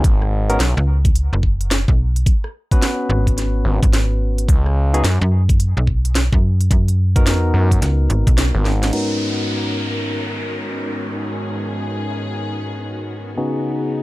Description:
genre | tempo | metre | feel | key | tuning
glitch hop | 108 BPM | 4/4 | swing 63% on 16ths | G# minor | A4 = 440 Hz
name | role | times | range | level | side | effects
barky tine electric piano | stabs | 0.0-14.0 s | G#2 to B4 | -24 LUFS | left 1 dB | sidechain pumping, low-pass filter, dub echo
gritty driven synth bass | bass | 0.0-8.9 s | G#1 to F#2 | -16 LUFS | equal | none
drum and bass drum kit | drums | 0.0-9.1 s | crash cymbal, hi-hat, rim click, snare drum | -23 LUFS | right 1 dB | none
electronic kick drum | drums | 0.0-8.4 s | none | -15 LUFS | equal | none
slap-like FM bass | bass | 0.8-8.5 s | F#1 to F#2 | -16 LUFS | equal | tube saturation
warm studio string section | sustained chords | 8.9-14.0 s | G#2 to A#4 | -27 LUFS | equal | sidechain pumping
downlifter | sound effects | 8.9-13.4 s | none | -29 LUFS | equal | none
room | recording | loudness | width
little or no reverb | dark, warm production | -16 LUFS | side -19 dB against mid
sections
0.0-8.9 A section; 8.9-14.0 B section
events
band accent 8.4; drum fill 8.7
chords
0.0 G#m11; 13.4 C#9sus4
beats
| 0.04 0.60 1.15 1.71 | 2.27 2.82 3.38 3.93 | 4.49 5.04 5.60 6.15 | 6.71 7.26 7.82 8.38 | 8.93 9.49 10.04 10.60 | 11.15 11.71 12.27 12.82 | 13.38 13.93

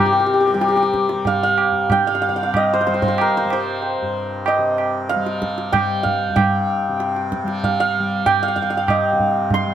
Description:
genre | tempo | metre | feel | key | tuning
indian classical, Hindustani | 94 BPM | 5/4 | straight | G raga malkauns | A4 = 440 Hz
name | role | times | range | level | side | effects
santur | melody | 0.0-9.7 s | G4 to C6 | -18 LUFS | equal | none
tanpura | drone | 0.0-9.7 s | G2 to G3 | -26 LUFS | left 2 dB | none
tabla | percussion | 0.6-9.7 s | none | -22 LUFS | right 3 dB | none
room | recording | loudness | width
light reverb | close, detailed microphones | -16 LUFS | side -10 dB against mid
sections
0.0-9.7 A section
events
speeding up 0.0-9.7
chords
none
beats
0.61 1.26 1.90 2.54 | 3.19 3.83 4.46 5.10 5.74 | 6.37 7.00 7.63 8.26 8.89 | 9.51

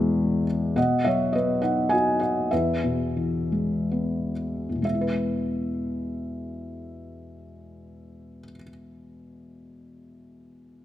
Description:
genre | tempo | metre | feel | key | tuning
classical, lyrical solo piano | 58-105 BPM | 3/4 | rubato | E major | A4 = 440 Hz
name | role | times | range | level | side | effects
felt-muted upright piano | solo | 0.0-10.8 s | E2 to G#5 | -24 LUFS | left 1 dB | none
room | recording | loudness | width
moderate concert hall reverb, RT60 2.1 s | none | -23 LUFS | side -12 dB against mid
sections
0.8-4.8 A section; 4.8-10.7 B section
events
slowing down 0.8-4.8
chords
0.0 E; 0.8 B; 2.5 E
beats
0.19 | 0.77 1.35 1.92 | 2.52 3.16 3.91 | 4.84 5.85 6.83 | 7.81 8.77 9.74

